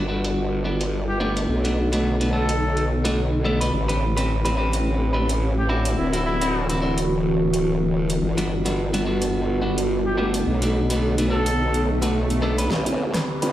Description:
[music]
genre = glitch hop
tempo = 107 BPM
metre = 4/4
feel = swing 57% on 16ths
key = A dorian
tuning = A4 = 440 Hz
[part]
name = warbly tape-like pad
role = sustained chords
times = 0.1-13.5 s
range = D3 to B4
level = -26 LUFS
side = equal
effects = chorus, built-in reverb
[part]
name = clean electric guitar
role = stabs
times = 0.0-13.5 s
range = G3 to B4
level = -25 LUFS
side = equal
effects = vintage 12-bit sampler grit, low-pass filter, tape echo
[part]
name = formant-sweep wobble bass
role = bass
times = 0.0-13.5 s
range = D1 to B1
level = -23 LUFS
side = equal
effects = chorus, overdrive, high-pass filter
[part]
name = pop drum kit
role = drums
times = 0.2-13.5 s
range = hi-hat, rim click, snare drum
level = -30 LUFS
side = right 1 dB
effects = low-pass filter on hats, low-pass filter on snare
[part]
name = warm trumpet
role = melody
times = 1.1-11.9 s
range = E4 to A4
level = -28 LUFS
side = equal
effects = tape echo
[part]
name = swell and riser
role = sound effects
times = 11.8-13.5 s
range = none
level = -31 LUFS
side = left 1 dB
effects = none
[sound]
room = wet studio reverb, RT60 0.6 s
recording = played on a big sound system in a bare room, stone room reverb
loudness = -20 LUFS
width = side -13 dB against mid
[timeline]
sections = 0.0-12.7 A section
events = swell 11.8-12.7; drum fill 12.7-13.5; riser 13.1-13.5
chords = 0.0 Gmaj7; 1.5 Bm7; 3.7 Am11; 6.0 D9; 8.2 Gmaj7; 10.5 Bm7; 12.7 Am11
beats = 0.37 0.93 | 1.49 2.05 2.61 3.17 | 3.73 4.29 4.86 5.42 | 5.98 6.54 7.10 7.66 | 8.22 8.78 9.34 9.90 | 10.46 11.02 11.58 12.14 | 12.71 13.27

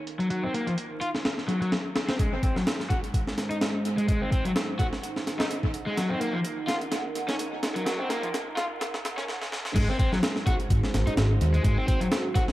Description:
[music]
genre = breakbeat, breaks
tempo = 127 BPM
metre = 4/4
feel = swing 55% on 16ths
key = Ab mixolydian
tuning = A4 = 440 Hz
[part]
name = dark analog pad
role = sustained chords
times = 0.0-12.5 s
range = Ab3 to Gb5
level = -34 LUFS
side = right 2 dB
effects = chorus, sidechain pumping
[part]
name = breakbeat sampler-style drum kit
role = drums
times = 0.1-12.5 s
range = crash cymbal, hi-hat, kick drum, snare drum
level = -27 LUFS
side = equal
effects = low-pass filter on hats, studio ambience, low-pass filter on snare, low-pass filter on kick, low-pass filter on cymbals, dub echo
[part]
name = overdriven semi-hollow guitar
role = riff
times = 0.2-12.4 s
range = F3 to Gb4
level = -30 LUFS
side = left 1 dB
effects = low-pass filter, dub echo
[part]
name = overdriven fingered electric bass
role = bass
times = 9.8-11.7 s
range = Ab1 to Eb2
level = -24 LUFS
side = equal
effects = none
[sound]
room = moderate spring reverb, RT60 1.6 s, digital ambience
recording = echo-heavy mix, vinyl crackle, high-pass filter, low-pass filter, faint mains hum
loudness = -24 LUFS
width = side -16 dB against mid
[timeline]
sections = 0.0-2.2 A section; 2.2-9.8 B section; 9.8-12.5 C section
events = filter sweep on analog synth pad 0.0-2.2; build-up 2.2-9.8; filter sweep on overdriven electric guitar 2.2-9.8; filter sweep 2.2-9.8; drum fill 6.0-9.3, 9.3-9.8; drop 9.8-12.5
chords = 0.0 Gb6; 2.2 Ab7; 6.0 Gb6; 9.8 Ab7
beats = | 0.30 0.78 1.25 1.72 | 2.19 2.67 3.14 3.61 | 4.08 4.56 5.03 5.50 | 5.97 6.45 6.92 7.39 | 7.86 8.34 8.81 9.28 | 9.75 10.23 10.70 11.17 | 11.64 12.12

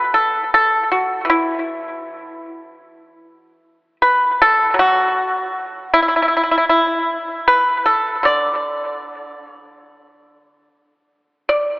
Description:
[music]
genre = chinese traditional, Chinese solo plucked strings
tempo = 77 BPM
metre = 4/4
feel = rubato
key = unclear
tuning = A4 = 442 Hz
[part]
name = pipa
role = solo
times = 0.0-11.8 s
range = B2 to D5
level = -14 LUFS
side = equal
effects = analog delay
[sound]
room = wet plate reverb, RT60 3.3 s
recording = dreamy mix soaked in reverb, AM radio sound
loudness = -14 LUFS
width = side -23 dB against mid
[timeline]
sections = 0.0-11.8 A section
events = none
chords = none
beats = 0.50 | 1.28 2.06 2.83 3.60 | 4.38 5.15 5.91 6.68 | 7.46 8.25 9.05 9.86 | 10.69 11.50

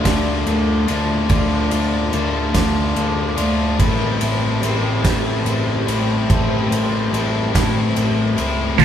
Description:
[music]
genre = post-rock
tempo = 48 BPM (dotted quarters)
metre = 6/8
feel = straight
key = A minor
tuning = A4 = 439 Hz
[part]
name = phased analog pad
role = sustained chords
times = 0.0-8.8 s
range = F4 to A5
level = -29 LUFS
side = right 2 dB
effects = phaser, chorus
[part]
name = cranked stack guitar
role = riff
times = 0.0-8.8 s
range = A2 to F4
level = -20 LUFS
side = left 3 dB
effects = overdrive
[part]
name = fuzz picked electric bass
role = bass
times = 0.0-8.8 s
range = A1 to D2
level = -22 LUFS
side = right 1 dB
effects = overdrive
[part]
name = big rock drum kit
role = drums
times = 0.1-8.8 s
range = crash cymbal, kick drum, ride cymbal, snare drum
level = -22 LUFS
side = right 1 dB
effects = none
[part]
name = cranked stack guitar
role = riff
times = 8.8 s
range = D3 to A4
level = -9 LUFS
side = right 4 dB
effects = overdrive, phaser
[sound]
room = moderate stone room reverb, RT60 1.2 s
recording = band playing live in one room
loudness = -16 LUFS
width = side -9 dB against mid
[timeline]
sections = 0.0-8.8 A section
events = none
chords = 0.0 Dm; 3.8 Am7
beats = 0.06 | 1.31 2.56 | 3.80 5.05 | 6.30 7.55 | 8.80

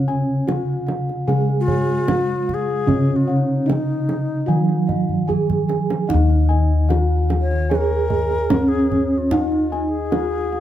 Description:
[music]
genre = Javanese gamelan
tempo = 75 BPM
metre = 4/4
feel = straight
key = Eb slendro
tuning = A4 = 439 Hz
[part]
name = gamelan-type bronze metallophone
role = melody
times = 0.0-10.6 s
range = Db4-25c to Ab4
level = -23 LUFS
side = right 2 dB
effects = none
[part]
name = gamelan-type bronze metallophone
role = accompaniment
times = 0.0-6.1 s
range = Db3-25c to Ab3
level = -23 LUFS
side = right 1 dB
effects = none
[part]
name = gamelan-type bossed gongs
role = arpeggios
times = 0.0-10.6 s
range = Db5-25c to Ab5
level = -32 LUFS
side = left 4 dB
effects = none
[part]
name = gamelan-type bronze metallophone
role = arpeggios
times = 0.0-10.6 s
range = Db5-25c to Ab5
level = -31 LUFS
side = right 4 dB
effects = none
[part]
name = gamelan-type bossed gongs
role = bass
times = 0.0-10.6 s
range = Eb2 to Gb4-45c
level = -21 LUFS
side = left 2 dB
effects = none
[part]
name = kendang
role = percussion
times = 0.1-10.6 s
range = none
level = -26 LUFS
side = right 3 dB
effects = none
[part]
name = bright low xiao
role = second line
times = 1.6-10.6 s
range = Eb4 to Db5-30c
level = -25 LUFS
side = left 3 dB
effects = none
[sound]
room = light reverb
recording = close, detailed microphones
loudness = -17 LUFS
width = side -12 dB against mid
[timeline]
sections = 0.0-6.1 A section; 6.1-10.6 A section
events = drum fill 5.1-6.1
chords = none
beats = 0.47 1.27 2.08 | 2.88 3.69 4.49 5.29 | 6.10 6.90 7.71 8.51 | 9.31 10.12

